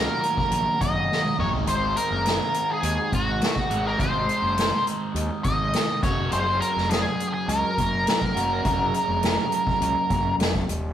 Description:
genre	psychedelic rock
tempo	103 BPM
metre	4/4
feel	straight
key	unclear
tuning	A4 = 440 Hz
part	octave-fuzz lead guitar	melody	0.0-10.3 s	Gb4 to Eb5	-24 LUFS	equal	wah, distortion
part	overdriven semi-hollow guitar	riff	0.0-10.7 s	Eb2 to Gb4	-29 LUFS	equal	phaser
part	fuzz fingered electric bass	bass	0.0-10.9 s	Eb1 to Eb2	-29 LUFS	equal	overdrive
part	soft-mallet drum kit	drums	0.2-10.8 s	hi-hat, kick drum, snare drum, toms	-27 LUFS	equal	none
room	wet stone room reverb, RT60 1.0 s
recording	rough rehearsal-room recording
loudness	-21 LUFS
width	side -10 dB against mid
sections	0.0-10.9 A section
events	drum fill 1.1-1.7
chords	0.0 Ebm; 1.4 Ab; 6.0 Gbmaj7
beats	0.52 1.10 | 1.68 2.26 2.84 3.42 | 4.00 4.58 5.16 5.74 | 6.32 6.90 7.49 8.07 | 8.65 9.23 9.81 10.39

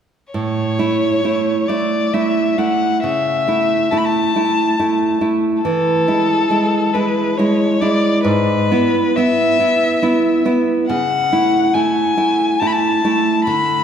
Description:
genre	romantic duo for violin and classical guitar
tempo	69 BPM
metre	3/4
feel	rubato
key	A major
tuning	A4 = 439 Hz
part	rich violin	melody	0.3-13.8 s	A4 to B5	-18 LUFS	left 4 dB	none
part	nylon-string guitar	accompaniment	0.3-13.8 s	G#2 to E4	-16 LUFS	right 2 dB	none
room	wet church reverb, RT60 2.8 s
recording	recorded in a church or concert hall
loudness	-14 LUFS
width	side -8 dB against mid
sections	0.3-13.8 A section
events	none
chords	0.3 A; 3.0 A/C#; 5.6 E; 8.2 E/G#; 10.9 A/C#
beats	| 0.33 1.23 2.13 | 3.03 3.91 4.78 | 5.63 6.50 7.38 | 8.25 9.17 10.03 | 10.88 11.74 12.60 | 13.47

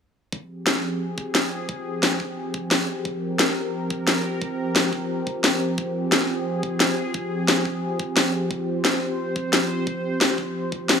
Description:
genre	dark technical drum and bass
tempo	176 BPM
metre	4/4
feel	straight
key	F minor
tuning	A4 = 438 Hz
part	sweeping resonant pad	sustained chords	0.3-11.0 s	F3 to C5	-26 LUFS	equal	chorus, sidechain pumping
part	electronic kick drum	drums	0.3-10.8 s	none	-31 LUFS	left 1 dB	high-pass filter on kick, high-pass filter on room
part	electronic snare drum	drums	0.7-11.0 s	none	-20 LUFS	left 1 dB	none
room	moderate lush hall reverb, RT60 2.1 s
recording	none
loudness	-21 LUFS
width	side -6 dB against mid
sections	0.3-11.0 A section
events	none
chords	0.3 Fm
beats	| 0.33 0.67 1.01 1.35 | 1.69 2.03 2.37 2.71 | 3.05 3.39 3.73 4.08 | 4.42 4.76 5.10 5.44 | 5.78 6.12 6.46 6.80 | 7.14 7.48 7.83 8.17 | 8.51 8.85 9.19 9.53 | 9.87 10.21 10.55 10.89

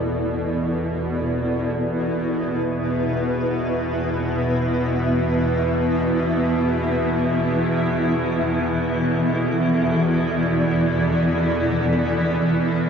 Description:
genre	dark ambient drone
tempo	free time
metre	none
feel	none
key	unclear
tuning	A4 = 441 Hz
part	granular cloud pad	sustained chords	0.0-12.9 s	E3 to E5	-22 LUFS	equal	built-in reverb
part	carillon bells	arpeggios	0.0-2.1 s	none	barely audible	none	none
part	bowed-like drone	drone	0.0-12.9 s	E2 to B2	-22 LUFS	equal	built-in reverb
room	wet cathedral reverb, RT60 5.1 s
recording	worn, warbling old tape, cassette tape, warbly pitch drift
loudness	-19 LUFS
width	side -7 dB against mid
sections	0.0-12.9 A section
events	none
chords	0.0 E5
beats	free time

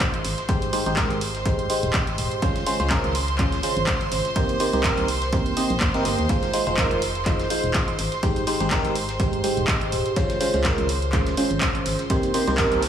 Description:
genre	piano house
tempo	124 BPM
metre	4/4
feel	swing 55% on 16ths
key	Ab major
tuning	A4 = 440 Hz
part	clear studio violin section	sustained chords	0.0-12.9 s	C5 to C6	-30 LUFS	right 2 dB	sidechain pumping
part	barking FM electric piano	riff	0.0-12.8 s	Ab2 to Eb5	-24 LUFS	right 1 dB	chorus, phaser, sidechain pumping, dub echo
part	breakbeat sampler-style drum kit	drums	0.0-12.9 s	hi-hat, snare drum	-38 LUFS	equal	none
part	electronic kick drum	drums	0.0-12.7 s	none	-26 LUFS	equal	none
part	punchy analog drum machine	drums	0.0-12.9 s	handclaps, hi-hat	-28 LUFS	right 1 dB	none
part	organ-like FM bass	bass	0.2-12.9 s	Eb1 to Eb2	-27 LUFS	equal	sidechain pumping
part	noise sweep	sound effects	12.6-12.9 s	none	-34 LUFS	right 4 dB	none
room	light reverb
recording	echo-heavy mix, small room reverb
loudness	-20 LUFS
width	side -9 dB against mid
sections	0.0-12.9 A section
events	noise sweep 12.6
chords	0.2 Abmaj7; 2.4 Dbmaj7; 4.4 Cm7; 6.3 Fm7; 8.0 Abmaj7; 10.2 Dbmaj7; 12.1 Cm7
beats	0.00 | 0.49 0.97 1.46 1.94 | 2.42 2.91 3.39 3.87 | 4.36 4.84 5.33 5.81 | 6.29 6.78 7.26 7.75 | 8.23 8.71 9.20 9.68 | 10.16 10.65 11.13 11.62 | 12.10 12.58

